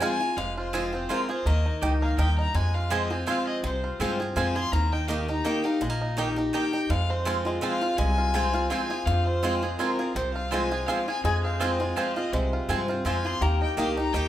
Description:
bluegrass; 166 BPM; 3/4; swing 54% on 8ths; F minor; A4 = 439 Hz
bluegrass banjo; melody; 0.0-14.3 s; Ab3 to Ab4; -33 LUFS; right 1 dB
rich fiddle; melody; 0.0-14.3 s; Bb4 to C6; -31 LUFS; left 2 dB
lap resonator guitar; second line; 0.0-0.2, 9.1-14.3 s; F4 to Ab4; -34 LUFS; left 5 dB
picked steel-string acoustic guitar; accompaniment; 0.0-14.3 s; F2 to G4; -29 LUFS; left 1 dB
mandolin; stabs; 0.0-14.2 s; Bb3 to Ab5; -32 LUFS; right 4 dB
upright bass; bass; 0.4-14.3 s; F1 to G2; -28 LUFS; equal
moderate large studio reverb, RT60 0.8 s; band playing live in one room; -24 LUFS; side -12 dB against mid
0.4-14.3 A section
0.4 Fm; 1.5 Eb; 2.5 Fm; 4.7 Eb; 6.9 Fm; 13.4 Eb
0.01 | 0.37 0.74 1.10 | 1.46 1.82 2.19 | 2.55 2.91 3.28 | 3.64 4.00 4.36 | 4.73 5.09 5.45 | 5.81 6.18 6.54 | 6.90 7.26 7.62 | 7.99 8.35 8.71 | 9.07 9.44 9.80 | 10.16 10.52 10.88 | 11.24 11.61 11.97 | 12.33 12.69 13.05 | 13.42 13.78 14.14

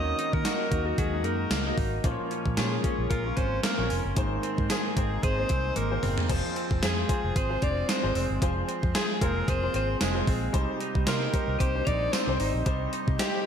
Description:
1980s-style pop; 113 BPM; 4/4; swing 55% on 16ths; F dorian from 6.3 s; A4 = 440 Hz
clear alto saxophone; melody; 0.0-13.5 s; Gb4 to Eb5; -32 LUFS; equal; ping-pong delay
marimba with hard mallets; second line; 0.0-13.5 s; Gb3 to Eb4; -37 LUFS; left 2 dB; ping-pong delay
clear baby grand piano; accompaniment; 0.0-13.5 s; Ab2 to Eb5; -33 LUFS; left 3 dB; wide subtle chorus
direct-recorded clean electric guitar; riff; 0.0-13.5 s; Eb3 to Ab4; -35 LUFS; right 5 dB; wide subtle chorus, ping-pong delay
vintage muted fingered electric bass; bass; 0.0-13.2 s; F1 to Eb3; -31 LUFS; equal
gated 80s digital drum machine; drums; 0.2-13.3 s; crash cymbal, hi-hat, kick drum, snare drum, tambourine, toms; -29 LUFS; equal; gated reverb, gated reverb snare, overdrive
moderate lush hall reverb, RT60 2.2 s; dreamy mix soaked in reverb; -25 LUFS; side -8 dB against mid
0.0-6.3 A section; 6.3-13.5 A section
drum fill 5.8-6.3
0.0 Ebm; 2.0 Bbm; 4.2 Abadd9; 6.3 Fm; 10.5 Cm
0.45 0.98 1.51 | 2.04 2.58 3.11 3.64 | 4.17 4.70 5.23 5.76 | 6.29 6.82 7.35 7.88 | 8.41 8.95 9.48 10.01 | 10.54 11.07 11.60 12.13 | 12.66 13.19

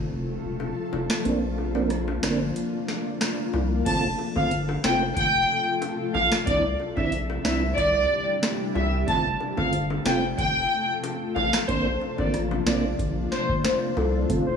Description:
dancehall; 92 BPM; 4/4; straight; F major; A4 = 439 Hz
granular cloud pad; sustained chords; 0.0-14.6 s; C3 to A4; -30 LUFS; left 2 dB; built-in reverb, sidechain pumping
saturated sub bass; bass; 0.0-14.6 s; E1 to C2; -29 LUFS; equal
bongos; percussion; 0.6-14.1 s; -36 LUFS; left 8 dB
booming analog drum machine; drums; 1.1-14.5 s; crash cymbal, hi-hat, kick drum, rim click, snare drum; -29 LUFS; equal; vintage 12-bit sampler grit
mellow tonewheel organ; accompaniment; 1.2-14.5 s; A3 to F4; -30 LUFS; right 4 dB; chorus vibrato, slow rotary speaker
dark studio violin section; melody; 3.9-13.4 s; C5 to A5; -25 LUFS; equal; tape echo
warm velvety synth lead; second line; 13.6-14.6 s; A4 to C5; -26 LUFS; left 4 dB; chorus, tape echo
light reverb; studio reverb; -22 LUFS; side -6 dB against mid
0.0-3.9 A section; 3.9-14.6 B section
kick muted 1.3-3.9
0.0 F; 1.3 Bbadd9; 3.9 F; 6.5 Cadd9; 9.1 F; 11.7 Bbadd9
0.60 | 1.25 1.91 2.56 3.21 | 3.86 4.51 5.17 5.82 | 6.47 7.12 7.78 8.43 | 9.08 9.73 10.38 11.04 | 11.69 12.34 12.99 13.64 | 14.30

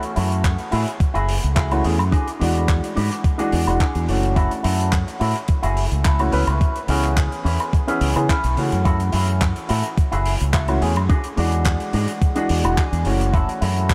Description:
nu-disco, nu disco; 107 BPM; 4/4; straight; F# minor; A4 = 440 Hz
warm baby grand piano; accompaniment; 0.0-13.9 s; E3 to B4; -27 LUFS; equal; tape echo
electric guitar with an envelope filter; riff; 0.0-13.9 s; C#4 to B4; -29 LUFS; equal; lush chorus, tape echo
damped 70s drum kit; drums; 0.0-13.9 s; handclaps, hi-hat, woodblock; -31 LUFS; equal; studio reverb
fingered electric bass with an envelope filter; bass; 0.2-13.9 s; E1 to C#3; -23 LUFS; equal; tube saturation
electronic kick drum; drums; 0.4-13.9 s; -21 LUFS; equal; studio reverb
moderate huge ambient reverb, RT60 6.9 s; dreamy mix soaked in reverb; -20 LUFS; mono
0.0-13.9 A section
0.0 F#m7; 2.1 E9; 4.4 F#m7; 6.3 C#m7; 8.9 F#m7; 11.1 E9; 13.3 F#m7
0.44 1.00 1.56 | 2.13 2.69 3.25 3.81 | 4.37 4.93 5.49 6.05 | 6.61 7.17 7.73 8.29 | 8.86 9.42 9.98 10.54 | 11.10 11.66 12.22 12.78 | 13.34 13.90

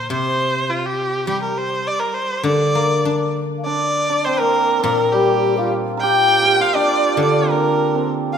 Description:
chinese traditional, Chinese chamber ensemble; 102 BPM; 2/4; rubato; D jue mode; A4 = 440 Hz
clear erhu; melody; 0.0-8.4 s; F4 to G5; -19 LUFS; equal
guzheng; accompaniment; 0.0-8.4 s; Bb2 to D4; -22 LUFS; left 2 dB
xiao; second line; 3.6-8.4 s; G4 to G5; -22 LUFS; left 6 dB
hammered dulcimer; second line; 3.7-8.4 s; G3 to Bb4; -20 LUFS; right 6 dB
wet scoring stage reverb, RT60 1.8 s; -15 LUFS; side -8 dB against mid
0.0-3.7 A section; 3.7-8.4 B section
| 0.11 0.70 | 1.29 1.87 | 2.46 3.06 | 3.66 4.26 | 4.85 5.44 | 6.02 6.60 | 7.19 7.78

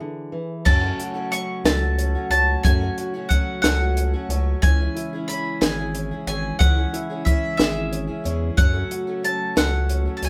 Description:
indie folk with a building arrangement; 61 BPM (dotted quarters); 6/8; straight; A4 = 441 Hz
fingerpicked steel-string acoustic guitar; accompaniment; 0.0-0.7 s; D3 to G#4; -32 LUFS; equal
picked steel-string acoustic guitar; accompaniment; 0.6-10.3 s; F#2 to A4; -35 LUFS; equal
mandolin; melody; 0.7-10.3 s; E5 to C#6; -28 LUFS; equal
mellow tonewheel organ; sustained chords; 0.7-10.3 s; C#3 to F#4; -34 LUFS; equal; slow rotary speaker
warm upright piano; arpeggios; 0.7-10.3 s; C#4 to C#5; -35 LUFS; equal
saturated sub bass; bass; 0.7-10.3 s; G#1 to F#2; -26 LUFS; equal
compact cocktail drum kit; drums; 0.7-10.3 s; crash cymbal, hi-hat, kick drum, snare drum; -22 LUFS; equal
wet studio reverb, RT60 0.5 s; band playing live in one room; -22 LUFS; mono
0.7-10.3 A section
break 0.0-0.7
0.0 E; 0.7 F#m; 4.6 C#m; 8.6 F#m
| 0.66 1.66 | 2.65 3.64 | 4.62 5.61 | 6.60 7.59 | 8.58 9.57

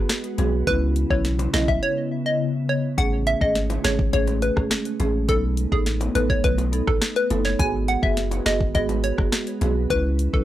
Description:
dancehall; 104 BPM; 4/4; straight; G# phrygian; A4 = 440 Hz
marimba with medium mallets; accompaniment; 0.0-10.4 s; A3 to B4; -28 LUFS; right 3 dB
glassy FM pad; sustained chords; 0.0-10.4 s; C#3 to B4; -31 LUFS; left 1 dB; ensemble chorus, built-in reverb, sidechain pumping
punchy sub bass; bass; 0.0-10.4 s; F#1 to C#2; -24 LUFS; equal
afro-pop drum kit; drums; 0.1-10.4 s; hi-hat, kick drum, rim click, snare drum; -25 LUFS; equal
bongos; percussion; 0.4-9.7 s; -34 LUFS; left 3 dB
hollow square pluck; melody; 0.7-10.4 s; G#4 to G#5; -24 LUFS; left 1 dB; chorus, tape echo
little or no reverb; dry, gritty hardware recording, transformer saturation; -20 LUFS; side -13 dB against mid
0.0-10.4 A section
break 1.8-3.0
0.0 G#m7; 0.7 C#m7; 3.0 Amaj7; 5.3 B7; 7.6 G#m7; 9.9 C#m7
0.10 | 0.67 1.25 1.82 2.40 | 2.98 3.56 4.13 4.71 | 5.29 5.86 6.44 7.02 | 7.59 8.17 8.75 9.32 | 9.90

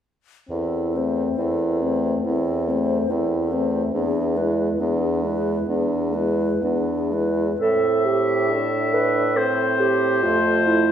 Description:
classical, slow romantic movement for wind quintet; 58-72 BPM; 4/4; rubato; A minor; A4 = 440 Hz
mellow hollow concert flute; melody; 0.5-7.6 s; G#4 to C5; -28 LUFS; left 10 dB
dark clarinet; accompaniment; 0.5-10.9 s; C4 to B4; -24 LUFS; right 3 dB
warm French horn; accompaniment; 0.5-10.9 s; G#3 to D4; -26 LUFS; left 2 dB
clear bassoon; bass; 0.5-10.9 s; E2 to A2; -25 LUFS; right 2 dB
clear oboe; second line; 7.6-10.9 s; C5 to E5; -22 LUFS; left 4 dB
wet scoring stage reverb, RT60 1.6 s; heard from further back in the room; -19 LUFS; side -9 dB against mid
0.5-7.6 A section; 7.6-10.9 B section
0.5 Am/E; 4.0 E7; 7.6 Am
| 0.50 1.39 2.26 3.11 | 3.95 4.81 5.69 6.63 | 7.61 8.49 9.37 10.24

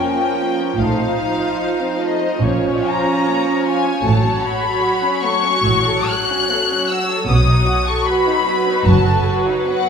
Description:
classical, slow romantic movement for string orchestra; 65-78 BPM; 4/4; rubato; A4 = 441 Hz
dark studio violin section; melody; 0.0-9.9 s; Db5 to F#6; -20 LUFS; left 4 dB
dark studio violin section; second line; 0.0-9.9 s; A3 to Db5; -23 LUFS; left 1 dB
rich studio viola section; accompaniment; 0.0-9.9 s; F3 to F#4; -20 LUFS; right 2 dB
dark studio cello section; bass; 0.8-9.5 s; F#2 to B2; -20 LUFS; right 1 dB
dark studio double bass section; bass; 0.8-9.5 s; F#1 to B1; -20 LUFS; right 2 dB
wet recital hall reverb, RT60 1.4 s; recorded in a church or concert hall; -15 LUFS; side -6 dB against mid
0.0-9.9 A section
0.0 Bbm; 0.8 F7/A; 2.4 Bbm; 4.0 F#m/A; 7.3 B7
| 0.78 1.59 2.42 3.27 | 4.05 4.82 5.65 6.50 | 7.28 8.07 8.87 9.68

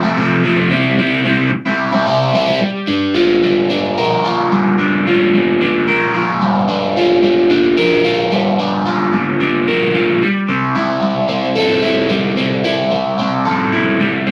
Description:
rock; 222 BPM (eighths); 7/8; straight; G dorian; A4 = 440 Hz
crunchy overdriven guitar; solo; 0.0-14.3 s; F2 to Bb4; -14 LUFS; equal; phaser
moderate club reverb, RT60 0.5 s; vinyl crackle; -14 LUFS; mono
0.0-2.6 A section; 2.6-14.3 B section
0.0 F; 0.7 C; 2.6 Gm7; 10.2 Am7/G
0.16 0.44 | 0.71 0.98 1.26 1.53 1.80 2.08 2.35 | 2.62 2.89 3.17 3.44 3.71 3.98 4.25 | 4.53 4.80 5.07 5.34 5.61 5.88 6.16 | 6.43 6.70 6.97 7.24 7.51 7.78 8.05 | 8.32 8.59 8.86 9.13 9.40 9.68 9.95 | 10.21 10.49 10.76 11.03 11.30 11.57 11.84 | 12.11 12.38 12.65 12.92 13.19 13.46 13.73 | 14.00 14.27

